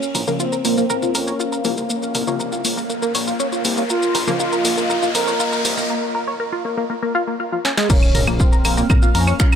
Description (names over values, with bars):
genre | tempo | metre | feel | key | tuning
melodic techno | 120 BPM | 4/4 | straight | Bb minor | A4 = 440 Hz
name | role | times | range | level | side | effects
expressive synth lead | melody | 0.0-9.6 s | C4 to Bb4 | -24 LUFS | right 1 dB | analog chorus, sidechain pumping, digital delay
evolving wavetable pad | sustained chords | 0.6-9.6 s | Bb3 to F5 | -28 LUFS | left 2 dB | phaser, built-in reverb, sidechain pumping
punchy analog drum machine | drums | 0.0-9.6 s | claves, crash cymbal, finger snaps, hi-hat, shaker, snare drum, toms | -23 LUFS | equal | sidechain pumping on toms, high-pass filter on toms, sidechain pumping on perc, high-pass filter on perc, sidechain pumping on hats, high-pass filter on hats, high-pass filter on snare, sidechain pumping on cymbals, high-pass filter on cymbals, high-pass filter on room
riser and impact | sound effects | 0.0-9.6 s | none | -29 LUFS | left 1 dB | none
tight sequenced synth | arpeggios | 0.1-9.6 s | F3 to Db6 | -22 LUFS | equal | chorus, phaser, sidechain pumping, digital delay
fat analog bass | bass | 0.1-9.3 s | Bb1 to F2 | -24 LUFS | equal | tube saturation, sidechain pumping, high-pass filter
filtered dub chord stab | stabs | 0.3-9.6 s | Db3 to Bb3 | -29 LUFS | left 3 dB | chorus, vintage 12-bit sampler grit, sidechain pumping, digital delay
electronic kick drum | drums | 7.9-9.5 s | none | -15 LUFS | equal | none
room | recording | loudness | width
light reverb, digital ambience | none | -16 LUFS | side -8 dB against mid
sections
0.0-7.9 A section; 7.9-9.6 B section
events
build-up 0.0-7.9; riser 0.0-5.9; filter sweep on ambient pad 0.0-7.9; break 5.9-7.9; drum fill 7.6; drop 7.9-9.6; impact 7.9-9.6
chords
0.0 Bbm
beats
0.40 0.90 1.40 | 1.90 2.40 2.90 3.40 | 3.90 4.40 4.90 5.40 | 5.90 6.40 6.90 7.40 | 7.90 8.40 8.90 9.40